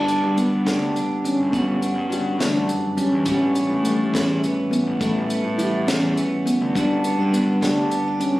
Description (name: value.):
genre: math rock and midwest emo.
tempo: 69 BPM (dotted quarters).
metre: 6/8.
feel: straight.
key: G lydian.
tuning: A4 = 439 Hz.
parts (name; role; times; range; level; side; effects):
twelve-string electric guitar; accompaniment; 0.0-8.4 s; D2 to G4; -26 LUFS; right 2 dB; spring reverb.
handpan; arpeggios; 0.0-8.4 s; A3 to F#4; -21 LUFS; left 1 dB; none.
fuzz fingered electric bass; bass; 0.0-8.4 s; G1 to A2; -26 LUFS; equal; overdrive.
compact cocktail drum kit; drums; 0.1-8.3 s; hi-hat, kick drum, snare drum; -28 LUFS; equal; none.
room: light reverb.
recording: recorded on a phone in the room, studio reverb, compression.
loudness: -18 LUFS.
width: side -17 dB against mid.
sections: 0.0-8.4 A section.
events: none.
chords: 0.0 Gmaj7; 3.3 A9; 6.8 Gmaj7.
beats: 0.67 | 1.54 2.40 | 3.27 4.14 | 5.01 5.88 | 6.75 7.62.